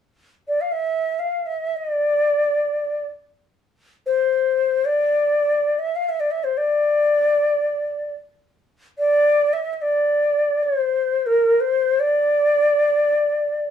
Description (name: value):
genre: Turkish makam ensemble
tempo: free time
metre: none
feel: none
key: D makam ussak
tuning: A4 = 440 Hz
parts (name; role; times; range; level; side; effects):
- bright reedy ney; solo; 0.5-13.7 s; Bb4 to F5; -18 LUFS; left 1 dB; none
room: light reverb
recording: band playing live in one room, small room ambience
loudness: -18 LUFS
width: side -9 dB against mid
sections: 0.1-13.7 A section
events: none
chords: none